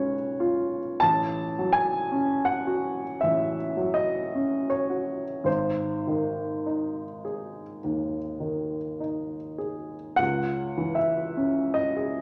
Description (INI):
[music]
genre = classical, romantic nocturne for solo piano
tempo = 46-55 BPM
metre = 4/4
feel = rubato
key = C# minor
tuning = A4 = 440 Hz
[part]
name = warm upright piano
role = solo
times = 0.0-12.2 s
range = G#1 to A5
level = -27 LUFS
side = equal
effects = none
[sound]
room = wet recital hall reverb, RT60 1.4 s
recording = none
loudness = -27 LUFS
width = mono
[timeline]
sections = 0.0-12.2 A section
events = none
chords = 0.0 C#7/B; 1.0 F#m/A; 5.5 G#; 10.2 C#m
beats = | 1.02 2.14 3.24 4.34 | 5.46 6.66 7.83 9.00 | 10.19 11.38